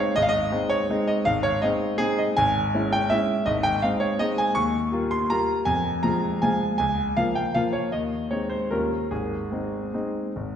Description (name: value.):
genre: classical, piano waltz.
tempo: 141-177 BPM.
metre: 3/4.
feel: rubato.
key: Ab major.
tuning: A4 = 438 Hz.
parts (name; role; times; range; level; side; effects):
clear grand piano; solo; 0.0-10.6 s; Ab1 to Db6; -22 LUFS; equal; none.
room: wet scoring stage reverb, RT60 1.5 s.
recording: heard from further back in the room.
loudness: -22 LUFS.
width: side -8 dB against mid.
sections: 0.0-10.6 A section.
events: none.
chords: 0.2 Ab; 2.4 Dbm/Ab; 3.5 Ab; 4.6 Eb9; 5.7 Fm; 6.8 Bbm7/Db; 7.9 Ab/Eb; 8.7 Eb9; 9.1 Ab.